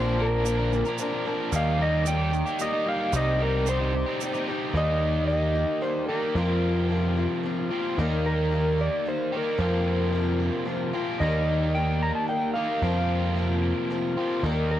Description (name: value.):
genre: folk rock and heartland rock.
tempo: 111 BPM.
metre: 3/4.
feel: straight.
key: unclear.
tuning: A4 = 438 Hz.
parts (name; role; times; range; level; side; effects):
electric slide guitar; melody; 0.0-14.8 s; Bb4 to Bb5; -28 LUFS; equal; cassette tape.
picked swing-style acoustic guitar; accompaniment; 0.0-14.8 s; Bb2 to Bb4; -32 LUFS; left 5 dB; none.
biting overdriven guitar; riff; 0.0-14.8 s; F2 to Bb4; -29 LUFS; right 1 dB; none.
deep dub picked electric bass; bass; 0.0-14.8 s; Bb1 to F2; -25 LUFS; equal; none.
tube shaker; percussion; 0.5-4.4 s; none; -38 LUFS; right 17 dB; none.
room: light reverb.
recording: home recording on cassette.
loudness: -23 LUFS.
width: side -12 dB against mid.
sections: 0.0-4.7 A section; 4.7-14.8 B section.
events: none.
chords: 0.0 Bbadd9; 1.5 Eb; 3.1 Cm; 4.7 Eb; 6.4 Fsus4; 8.0 Eb; 9.6 Fsus4; 11.2 Eb; 12.8 Fsus4.